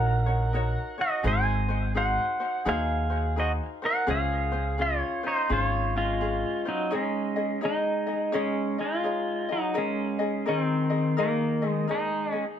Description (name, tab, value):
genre	Hawaiian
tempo	84 BPM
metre	4/4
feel	swing 64% on 8ths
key	Db major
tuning	A4 = 438 Hz
part	pedal steel guitar	melody	0.0-12.4 s	Eb3 to Ab5	-26 LUFS	equal	digital delay
part	ukulele	accompaniment	0.0-12.6 s	Db4 to Eb5	-32 LUFS	left 4 dB	none
part	upright bass	bass	0.0-6.4 s	Ab1 to Eb2	-27 LUFS	equal	none
room	moderate studio reverb, RT60 0.7 s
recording	band playing live in one room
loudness	-24 LUFS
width	side -9 dB against mid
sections	0.0-6.9 A section; 6.9-12.6 B section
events	none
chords	0.0 Ebm7/Bb; 1.2 Ab7; 4.1 Dbmaj7; 6.9 Dbsus2; 9.8 Absus2